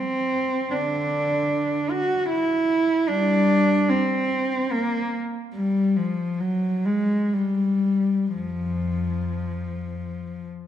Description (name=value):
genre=classical, free, expressive piece for unaccompanied cello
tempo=54-77 BPM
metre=3/4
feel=rubato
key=unclear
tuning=A4 = 440 Hz
part: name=warm cello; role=solo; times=0.0-10.5 s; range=F2 to Gb4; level=-21 LUFS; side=equal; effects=none
room=wet concert hall reverb, RT60 1.9 s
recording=dark, warm production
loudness=-21 LUFS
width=side -10 dB against mid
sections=0.0-10.7 A section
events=none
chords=none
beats=| 0.72 1.51 2.31 | 3.10 3.89 4.72 | 5.55 6.39 7.33 | 8.36 9.45